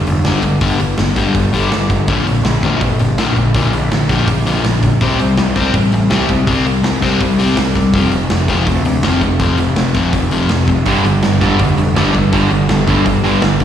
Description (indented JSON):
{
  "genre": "punk rock",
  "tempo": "164 BPM",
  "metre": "4/4",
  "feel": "straight",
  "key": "unclear",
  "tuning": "A4 = 439 Hz",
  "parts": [
    { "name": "crunchy overdriven guitar", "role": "riff", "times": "0.0-13.6 s", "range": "F2 to C4", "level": "-15 LUFS", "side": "left 4 dB", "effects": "slapback echo" },
    { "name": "fuzz picked electric bass", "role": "bass", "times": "0.0-13.6 s", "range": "F1 to D2", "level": "-17 LUFS", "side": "right 1 dB", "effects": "overdrive" },
    { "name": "big rock drum kit", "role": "drums", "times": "0.1-13.6 s", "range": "hi-hat, kick drum, snare drum", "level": "-19 LUFS", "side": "right 1 dB", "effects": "none" },
    { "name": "crunchy overdriven guitar", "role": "riff", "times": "10.9-13.6 s", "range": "G2 to G3", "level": "-16 LUFS", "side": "right 11 dB", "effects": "slapback echo" }
  ],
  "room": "small room reverb",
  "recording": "live gig heard through the venue's PA, recital hall reverb",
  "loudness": "-12 LUFS",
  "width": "side -9 dB against mid",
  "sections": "0.0-13.6 A section",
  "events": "none",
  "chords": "0.0 G5; 2.1 Bb; 5.0 C5; 7.9 F5; 10.9 G5"
}